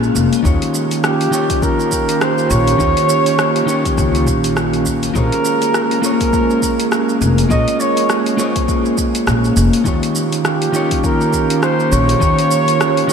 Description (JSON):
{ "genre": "sunset chillout", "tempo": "102 BPM", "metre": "4/4", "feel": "swing 58% on 16ths", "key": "unclear", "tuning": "A4 = 441 Hz", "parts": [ { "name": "mellow flugelhorn", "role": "melody", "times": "0.0-13.1 s", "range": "F4 to Eb5", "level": "-19 LUFS", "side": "right 1 dB", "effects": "ping-pong delay, shimmer reverb" }, { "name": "electric guitar at the edge of break-up", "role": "accompaniment", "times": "0.0-13.1 s", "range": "Eb3 to Db5", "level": "-18 LUFS", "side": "moving between left 5 dB and right 4 dB", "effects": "auto-pan, tape echo" }, { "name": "airy breathy pad", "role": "sustained chords", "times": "0.0-13.1 s", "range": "Eb3 to G4", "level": "-20 LUFS", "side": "right 1 dB", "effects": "chorus" }, { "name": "upright bass", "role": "bass", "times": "0.0-12.3 s", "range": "F1 to Eb2", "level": "-17 LUFS", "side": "equal", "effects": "none" }, { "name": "deep house drum kit", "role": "drums", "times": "0.0-13.1 s", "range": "hi-hat, rim click, shaker", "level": "-22 LUFS", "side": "right 1 dB", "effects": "none" }, { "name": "electronic kick drum", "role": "drums", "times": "0.5-12.4 s", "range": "none", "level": "-20 LUFS", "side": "equal", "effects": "none" } ], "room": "wet cathedral reverb, RT60 5.8 s", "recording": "dreamy mix soaked in reverb", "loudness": "-13 LUFS", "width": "side -6 dB against mid", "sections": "0.0-13.1 A section", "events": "none", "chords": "0.5 Eb7; 5.2 Bbm7; 9.9 Eb7" }